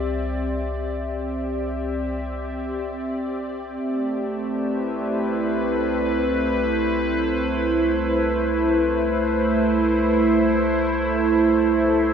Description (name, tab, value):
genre	ambient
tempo	free time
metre	none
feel	none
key	unclear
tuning	A4 = 441 Hz
part	evolving wavetable pad	sustained chords	0.0-12.1 s	A3 to E5	-20 LUFS	right 1 dB	chorus, built-in reverb, shimmer reverb
part	round analog bass	bass	0.0-12.1 s	C2	-32 LUFS	left 1 dB	none
room	wet cathedral reverb, RT60 5.8 s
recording	in a vast, echoing space, cassette tape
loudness	-20 LUFS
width	side -7 dB against mid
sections	0.0-12.1 A section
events	fade-out on analog synth bass 0.0-12.1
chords	0.0 Cadd9; 3.8 Am7/C